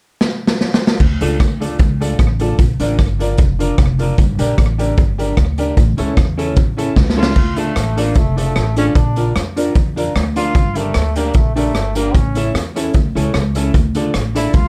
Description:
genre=ska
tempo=151 BPM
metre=4/4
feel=straight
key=D harmonic minor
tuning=A4 = 440 Hz
part: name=raw garage drum kit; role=drums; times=0.2-14.6 s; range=crash cymbal, hi-hat, kick drum, rim click, snare drum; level=-18 LUFS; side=equal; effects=slapback echo
part: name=upright bass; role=bass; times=1.0-14.7 s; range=F1 to F2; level=-21 LUFS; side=equal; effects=none
part: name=semi-hollow electric guitar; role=accompaniment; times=1.2-14.5 s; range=A3 to D5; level=-25 LUFS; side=equal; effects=phaser, slapback echo
part: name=warm upright piano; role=stabs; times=1.2-14.5 s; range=C#4 to Bb4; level=-26 LUFS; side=equal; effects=slapback echo
part: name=brilliant trombone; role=melody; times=7.2-14.7 s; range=A3 to F4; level=-25 LUFS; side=equal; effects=slapback echo
room=little or no reverb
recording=dark, warm production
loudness=-16 LUFS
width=mono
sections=1.0-7.4 A section; 7.4-14.7 B section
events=drum fill 0.2-1.0, 7.0-7.4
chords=0.0 N.C.; 1.0 Dm; 2.6 Bb; 4.2 Gm; 5.8 A; 7.4 Dm; 9.0 Bb; 10.6 Gm; 12.1 A; 13.7 Dm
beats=0.20 0.60 | 1.00 1.40 1.79 2.19 | 2.59 2.99 3.39 3.78 | 4.18 4.58 4.98 5.37 | 5.77 6.17 6.57 6.96 | 7.36 7.76 8.16 8.56 | 8.96 9.36 9.75 10.15 | 10.55 10.95 11.35 11.75 | 12.15 12.55 12.95 13.35 | 13.74 14.14 14.54

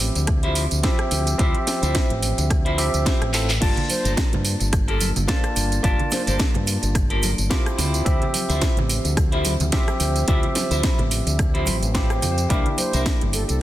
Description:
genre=nu-disco, nu disco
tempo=108 BPM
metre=4/4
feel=swing 56% on 16ths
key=D minor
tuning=A4 = 440 Hz
part: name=barky tine electric piano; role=accompaniment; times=0.0-13.6 s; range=F3 to A5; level=-27 LUFS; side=equal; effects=sidechain pumping, tape echo
part: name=fingered electric bass with an envelope filter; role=bass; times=0.0-13.6 s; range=G1 to G2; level=-23 LUFS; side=equal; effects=tube saturation
part: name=house drum kit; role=drums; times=0.0-13.6 s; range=crash cymbal, handclaps, hi-hat, rim click, snare drum, tambourine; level=-26 LUFS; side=right 1 dB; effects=none
part: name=clean electric guitar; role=riff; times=0.2-13.5 s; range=D4 to F5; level=-30 LUFS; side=left 1 dB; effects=lush chorus, tape echo
part: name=electronic kick drum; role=drums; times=0.3-13.2 s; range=none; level=-22 LUFS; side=equal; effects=none
part: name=egg shaker and congas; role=percussion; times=3.6-13.6 s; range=none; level=-32 LUFS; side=right 2 dB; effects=none
part: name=mellow concert flute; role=melody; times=3.9-6.3, 12.8-13.6 s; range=A4 to C5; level=-31 LUFS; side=right 1 dB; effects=tape echo
room=light reverb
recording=dense, heavily limited modern master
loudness=-18 LUFS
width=side -14 dB against mid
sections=0.0-13.6 A section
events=drum fill 3.3; clean electric guitar fill 11.7-12.5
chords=0.0 Dm11; 3.6 Gm9; 7.8 Dm11; 12.5 C9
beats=0.28 0.84 | 1.39 1.95 2.50 3.06 | 3.62 4.17 4.73 5.28 | 5.84 6.39 6.95 7.50 | 8.06 8.62 9.17 9.73 | 10.28 10.84 11.39 11.95 | 12.50 13.06 13.62

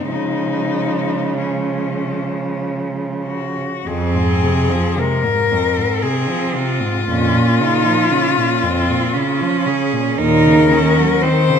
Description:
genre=classical, lyrical piece for cello ensemble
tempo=45-59 BPM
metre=3/4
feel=rubato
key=unclear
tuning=A4 = 440 Hz
part: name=rich cello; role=melody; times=0.0-11.6 s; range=Db4 to C5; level=-19 LUFS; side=left 7 dB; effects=none
part: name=clear cello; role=second line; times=0.0-11.6 s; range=Ab3 to Eb4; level=-20 LUFS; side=right 7 dB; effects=none
part: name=rich cello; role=accompaniment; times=0.0-11.6 s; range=F2 to Gb3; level=-21 LUFS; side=left 2 dB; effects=none
part: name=warm cello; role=bass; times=0.0-11.0 s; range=Eb2 to Db3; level=-20 LUFS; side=right 2 dB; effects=none
room=wet recital hall reverb, RT60 1.4 s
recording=none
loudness=-15 LUFS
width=side -7 dB against mid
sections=0.0-3.9 A section; 3.9-11.6 B section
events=none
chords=0.1 Db; 3.9 Fm; 7.1 Bbm/F; 10.2 Ebm7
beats=| 0.09 1.38 2.64 | 3.86 4.99 6.03 | 7.08 8.11 9.15 | 10.18 11.22

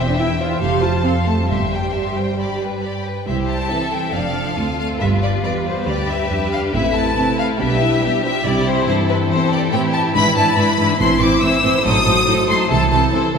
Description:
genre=quick classical-period movement for string orchestra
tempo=140 BPM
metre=4/4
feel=straight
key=C major, A minor from 10.1 s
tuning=A4 = 440 Hz
part: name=clear studio violin section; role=melody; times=0.0-13.1 s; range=B4 to E6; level=-20 LUFS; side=left 3 dB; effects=none
part: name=rich studio violin section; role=second line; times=0.0-13.4 s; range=E4 to A5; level=-23 LUFS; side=left 1 dB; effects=none
part: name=dark studio viola section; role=accompaniment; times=0.0-13.4 s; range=E3 to G4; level=-21 LUFS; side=right 1 dB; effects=none
part: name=clear studio double bass section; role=bass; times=0.0-12.9 s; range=E1 to C2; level=-25 LUFS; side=right 2 dB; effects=none
part: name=rich studio cello section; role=bass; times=0.0-13.4 s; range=C2 to B3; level=-22 LUFS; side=right 2 dB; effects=none
room=wet church reverb, RT60 2.8 s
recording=recorded in a church or concert hall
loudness=-15 LUFS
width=side -6 dB against mid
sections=0.0-3.3 A section; 3.3-13.4 B section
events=none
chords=0.0 C/E; 0.6 F; 1.5 C/G; 3.3 C; 4.1 Dm/F; 5.0 G7; 6.7 Am; 7.6 G/B; 8.4 C; 10.1 E7/G#; 11.0 Am; 11.8 Adim7; 12.7 Am/C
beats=0.19 0.61 1.05 | 1.50 1.95 2.39 2.83 | 3.28 3.71 4.14 4.58 | 5.01 5.44 5.87 6.30 | 6.73 7.16 7.59 8.02 | 8.45 8.87 9.30 9.72 | 10.14 10.57 11.00 11.42 | 11.85 12.27 12.70 13.12

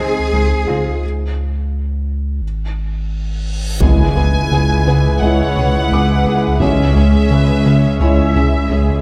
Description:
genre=cinematic, hybrid orchestral and electronic film score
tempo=86 BPM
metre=4/4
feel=straight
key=unclear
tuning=A4 = 444 Hz
part: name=warm symphonic violin section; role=second line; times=0.0-8.8 s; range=B3 to G#5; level=-30 LUFS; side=equal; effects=none
part: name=clear symphonic viola section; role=accompaniment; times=0.0-0.8, 5.2-9.0 s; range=D#3 to E5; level=-28 LUFS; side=equal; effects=none
part: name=brassy analog pad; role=sustained chords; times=0.0-9.0 s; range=G#3 to E5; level=-23 LUFS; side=equal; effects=chorus
part: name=mellow French horn section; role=sustained chords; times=0.0-8.2 s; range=G#3 to E4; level=-27 LUFS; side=equal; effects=none
part: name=round analog bass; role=riff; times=0.0-8.9 s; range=C#2 to C#3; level=-20 LUFS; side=equal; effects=none
part: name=rich studio double bass section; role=bass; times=0.0-9.0 s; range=C#2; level=-21 LUFS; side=equal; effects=none
part: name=rich symphonic cello section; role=bass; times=0.0-9.0 s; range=C#2 to G#4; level=-24 LUFS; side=equal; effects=none
part: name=warm sub bass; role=bass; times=0.0-9.0 s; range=G#1 to C#2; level=-22 LUFS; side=equal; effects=none
part: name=felt-muted upright piano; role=texture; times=0.0-9.0 s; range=E4 to D6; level=-30 LUFS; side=equal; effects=tape echo
part: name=reverse cymbal and impact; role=sound effects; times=3.5-6.6 s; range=none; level=-27 LUFS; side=equal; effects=none
part: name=rich chamber violin section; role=melody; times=3.8-9.0 s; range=C#5 to G#5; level=-25 LUFS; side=equal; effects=none
part: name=taiko ensemble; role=drums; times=3.8-8.7 s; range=none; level=-23 LUFS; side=equal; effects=none
room=moderate scoring stage reverb, RT60 1.9 s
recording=none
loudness=-15 LUFS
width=mono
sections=0.0-3.8 A section; 3.8-9.0 A section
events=break 1.0-3.8; drum fill 2.8-3.8; reverse cymbal 3.5-3.8; impact 3.8-6.6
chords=0.0 G#/C#; 1.0 N.C.; 3.8 E/C#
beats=0.33 | 1.03 1.72 2.42 3.12 | 3.82 4.51 5.21 5.91 | 6.61 7.30 8.00 8.70

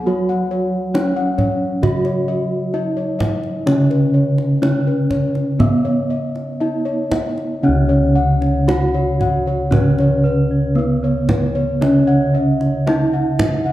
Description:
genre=Javanese gamelan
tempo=57-70 BPM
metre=4/4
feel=straight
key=unclear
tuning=A4 = 444 Hz
part: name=gamelan-type bronze metallophone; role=melody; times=0.0-13.7 s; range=Cb4-45c to Gb4-35c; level=-22 LUFS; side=equal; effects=none
part: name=gamelan-type bronze metallophone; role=accompaniment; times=0.0-13.7 s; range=Db3 to Cb4-45c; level=-19 LUFS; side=right 1 dB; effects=none
part: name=gamelan-type bossed gongs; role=bass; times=0.0-13.7 s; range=Db2 to Gb4-35c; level=-22 LUFS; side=left 1 dB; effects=none
part: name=gamelan-type bossed gongs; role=arpeggios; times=0.1-13.7 s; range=Cb5-45c to Gb5-35c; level=-24 LUFS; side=left 3 dB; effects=none
part: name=kendang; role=percussion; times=0.9-13.6 s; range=none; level=-22 LUFS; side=right 1 dB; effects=none
part: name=gamelan-type bronze metallophone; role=arpeggios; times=7.6-13.7 s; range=Cb5-45c to Gb5-35c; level=-26 LUFS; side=right 4 dB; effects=none
room=wet recital hall reverb, RT60 1.6 s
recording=dark, warm production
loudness=-15 LUFS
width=side -14 dB against mid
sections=0.0-7.6 A section; 7.6-13.7 B section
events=none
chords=none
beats=| 0.07 0.94 1.83 2.74 | 3.67 4.62 5.60 6.60 | 7.63 8.68 9.73 10.77 | 11.82 12.86

